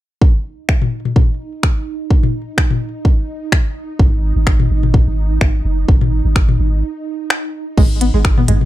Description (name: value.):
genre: minimal techno.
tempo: 127 BPM.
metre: 4/4.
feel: swing 54% on 16ths.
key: unclear.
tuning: A4 = 439 Hz.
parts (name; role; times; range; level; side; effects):
electronic kick drum; drums; 0.2-8.3 s; none; -13 LUFS; equal; small room reverb.
swarming drone; texture; 0.9-8.7 s; G#3 to G#4; -26 LUFS; right 5 dB; built-in reverb, sidechain pumping.
minimal click drum kit; drums; 0.7-8.6 s; crash cymbal, finger snaps, hi-hat; -19 LUFS; left 2 dB; overdrive, small room reverb.
electronic toms; percussion; 0.8-8.7 s; none; -18 LUFS; left 4 dB; overdrive, small room reverb.
punchy sub bass; bass; 4.0-8.7 s; F#1 to G#1; -16 LUFS; equal; sidechain pumping.
string-like resonator pluck; riff; 7.8-8.5 s; G#3 to B3; -19 LUFS; equal; chorus, phaser, sidechain pumping, ping-pong delay.
room: little or no reverb.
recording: dark, warm production.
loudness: -13 LUFS.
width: side -15 dB against mid.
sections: 0.2-7.8 A section.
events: break 6.8-7.8.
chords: 0.2 G#5; 7.8 N.C..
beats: | 0.22 0.69 1.16 1.63 | 2.11 2.58 3.05 3.52 | 4.00 4.47 4.94 5.41 | 5.88 6.36 6.83 7.30 | 7.78 8.25.